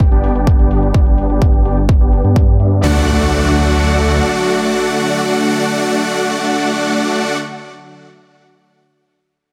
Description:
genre	EDM, festival progressive house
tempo	127 BPM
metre	4/4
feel	straight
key	D major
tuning	A4 = 440 Hz
part	lush unison pad	sustained chords	0.0-7.4 s	D3 to G4	-24 LUFS	equal	chorus, sidechain pumping
part	detuned saw bass	bass	0.0-4.2 s	G1 to G2	-18 LUFS	equal	chorus, sidechain pumping
part	electronic hi-hat	drums	0.0-2.8 s	none	-52 LUFS	equal	low-pass filter on hats, low-pass filter on room
part	electronic kick drum	drums	0.0-2.5 s	none	-14 LUFS	equal	none
part	supersaw chords	riff	0.1-7.4 s	A3 to G5	-18 LUFS	equal	sidechain pumping, low-pass filter, digital delay
part	impact	sound effects	2.8-7.5 s	none	-27 LUFS	equal	none
room	light reverb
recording	none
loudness	-14 LUFS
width	mono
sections	0.0-2.8 A section; 2.8-6.6 B section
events	filter sweep on analog synth pad 0.0-2.8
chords	0.0 G; 2.8 D

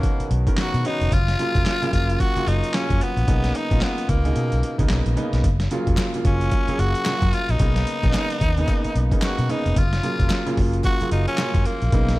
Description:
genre	R&B, new jack swing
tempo	111 BPM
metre	4/4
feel	swing 60% on 16ths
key	F# major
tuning	A4 = 440 Hz
part	raspy tenor saxophone	melody	0.0-12.2 s	A#3 to F#4	-26 LUFS	left 1 dB	none
part	warm concert grand piano	accompaniment	0.0-12.2 s	B2 to A#4	-26 LUFS	right 1 dB	none
part	boom bap sampler-style drum kit	drums	0.0-12.2 s	handclaps, hi-hat, kick drum, snare drum	-23 LUFS	equal	overdrive, gated reverb
part	vintage muted fingered electric bass	bass	0.2-12.2 s	E#1 to B2	-22 LUFS	equal	none
part	group handclap	percussion	6.0-11.5 s	none	-40 LUFS	left 4 dB	none
room	small room ambience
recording	none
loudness	-18 LUFS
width	side -18 dB against mid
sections	0.0-12.2 A section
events	none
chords	0.0 Bmaj9; 1.1 F#maj7; 3.3 Bmaj9; 5.4 F#maj7; 7.6 Bmaj9; 9.8 F#maj7

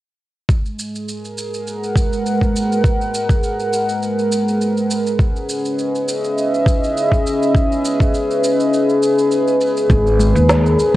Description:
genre	organic downtempo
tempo	102 BPM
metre	4/4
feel	swing 55% on 16ths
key	G# minor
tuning	A4 = 445 Hz
part	warm analog pad	sustained chords	0.7-11.0 s	G#3 to F#5	-16 LUFS	equal	chorus, sidechain pumping
part	electronic kick drum	drums	0.5-10.0 s	none	-16 LUFS	equal	overdrive
part	electronic shaker and snare drum	drums	0.5-10.9 s	none	-25 LUFS	right 1 dB	none
part	upright bass	bass	9.9-10.7 s	G#1 to D#2	-14 LUFS	equal	sidechain pumping
part	congas	percussion	10.2-10.6 s	none	-24 LUFS	left 1 dB	none
room	light reverb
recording	worn, warbling old tape, cassette tape, warbly pitch drift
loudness	-14 LUFS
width	side -15 dB against mid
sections	0.5-11.0 A section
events	none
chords	0.5 G#m9; 5.2 C#m7; 9.9 G#madd9

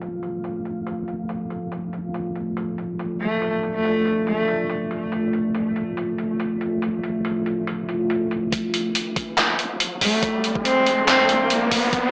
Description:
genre	deep dubstep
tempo	141 BPM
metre	4/4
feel	swing 54% on 16ths, half-time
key	D minor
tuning	A4 = 441 Hz
part	deep dark ambient pad	sustained chords	0.0-12.1 s	A3 to F5	-28 LUFS	equal	chorus, built-in reverb
part	deep soft wobble bass	bass	0.0-12.1 s	D1 to A1	-39 LUFS	equal	chorus, transformer saturation, high-pass filter
part	trip hop sampler-style drum kit	drums	0.0-12.0 s	handclaps, hi-hat, snare drum	-27 LUFS	equal	high-pass filter on hats, low-pass filter on hats, high-pass filter on snare, low-pass filter on snare, high-pass filter on room, low-pass filter on room
part	dark cello	melody	3.2-4.7, 10.0-11.4 s	A3 to C4	-24 LUFS	equal	dub echo
part	electronic kick drum	drums	8.5-12.0 s	none	-30 LUFS	equal	overdrive
part	riser	sound effects	9.3-12.1 s	none	-28 LUFS	equal	none
room	wet digital room reverb, RT60 1.1 s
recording	dry, gritty hardware recording, small speaker sound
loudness	-23 LUFS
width	mono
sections	0.0-8.5 A section; 8.5-12.1 B section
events	filter sweep on ambient pad 0.0-8.5, 8.5-12.1; build-up 8.5-12.1; riser 9.3-12.1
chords	0.0 Dm

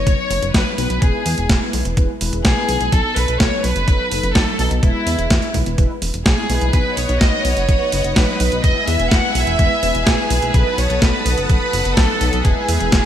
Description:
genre	italo disco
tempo	126 BPM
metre	4/4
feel	straight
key	unclear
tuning	A4 = 440 Hz
part	rich studio violin section	melody	0.0-13.1 s	E4 to F#5	-21 LUFS	equal	ping-pong delay
part	mellow synth brass	stabs	0.0-13.1 s	F#3 to B4	-25 LUFS	left 2 dB	chorus
part	chorused synth bass	bass	0.0-13.0 s	E1 to E2	-21 LUFS	equal	none
part	clean 12-bit digital drum machine	drums	0.1-13.0 s	hi-hat, snare drum	-21 LUFS	right 1 dB	gated reverb
part	electronic kick drum	drums	0.1-13.0 s	none	-17 LUFS	equal	none
part	string machine, full ensemble	sustained chords	6.7-13.1 s	B4 to E6	-25 LUFS	equal	ensemble chorus
room	light reverb, digital ambience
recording	bright 1980s-style digital production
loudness	-14 LUFS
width	side -10 dB against mid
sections	0.0-13.1 A section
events	none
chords	0.0 B; 1.0 E; 2.9 B7; 4.8 E; 6.7 B; 8.6 E; 10.5 B7; 12.4 E

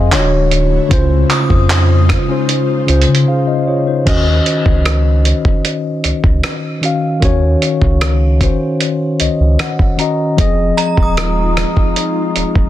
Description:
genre	contemporary R&B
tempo	76 BPM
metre	4/4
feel	straight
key	Eb dorian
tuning	A4 = 439 Hz
part	mellow tine electric piano	accompaniment	0.0-12.7 s	Db3 to C6	-15 LUFS	left 2 dB	medium stereo tremolo
part	ethereal airy pad	sustained chords	0.0-4.0, 10.9-12.7 s	Db3 to C5	-23 LUFS	equal	ensemble chorus, built-in reverb
part	warm sub bass	bass	0.0-12.7 s	D1 to Db3	-14 LUFS	equal	none
part	dusty soul sampler-style drum kit	drums	0.1-12.7 s	crash cymbal, handclaps, hi-hat, kick drum, rim click	-15 LUFS	equal	soft clipping on snare
part	synth chime	texture	1.3-3.8, 10.8-12.7 s	Bb5 to Eb6	-23 LUFS	right 1 dB	ensemble chorus, ping-pong delay
room	little or no reverb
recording	dense, heavily limited modern master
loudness	-11 LUFS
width	side -13 dB against mid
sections	0.0-4.1 A section; 4.1-12.7 B section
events	break 3.3-4.1; tine electric piano fill 8.8-10.4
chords	0.1 Dmaj7; 0.9 Dbmaj7; 4.1 Ebm7; 10.4 Fm7

